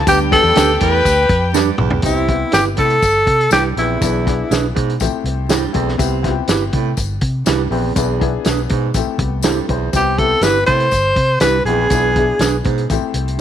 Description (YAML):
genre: uptempo 1960s-style soul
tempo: 122 BPM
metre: 4/4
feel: straight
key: C major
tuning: A4 = 440 Hz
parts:
  - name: warm tenor saxophone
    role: melody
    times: 0.0-4.7, 10.0-12.6 s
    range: E4 to C5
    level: -15 LUFS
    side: equal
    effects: none
  - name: warm studio string section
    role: second line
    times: 0.0-2.0 s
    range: G4 to G5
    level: -22 LUFS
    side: left 4 dB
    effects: none
  - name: vintage muted fingered electric bass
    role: bass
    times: 0.0-13.4 s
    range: G1 to C3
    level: -20 LUFS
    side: equal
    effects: none
  - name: clear upright piano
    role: accompaniment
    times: 0.1-13.4 s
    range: G3 to C5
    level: -23 LUFS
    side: left 12 dB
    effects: none
  - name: warm baritone saxophone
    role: riff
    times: 0.1-12.8 s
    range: E2 to C3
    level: -24 LUFS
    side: right 13 dB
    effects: none
  - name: warm soul drum kit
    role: drums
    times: 0.1-13.4 s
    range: hi-hat, kick drum, snare drum, toms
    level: -20 LUFS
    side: equal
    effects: none
  - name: tambourine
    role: percussion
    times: 0.1-13.0 s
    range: none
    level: -29 LUFS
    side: left 15 dB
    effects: none
  - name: mellow electric guitar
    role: stabs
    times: 0.6-12.6 s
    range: D4 to C5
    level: -22 LUFS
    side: right 11 dB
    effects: none
room: light reverb, small room reverb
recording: 1960s-style stereo with parts hard left and right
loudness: -13 LUFS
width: side -10 dB against mid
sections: 0.0-2.0 A section; 2.0-13.4 B section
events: drum fill 1.5-2.0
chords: 0.1 G/D; 2.0 Cmaj7; 4.0 E7/B; 5.0 Am7; 6.0 Cmaj7; 8.0 E7/B; 8.9 Am7; 9.9 Cmaj7; 11.9 E7/B; 12.9 Am7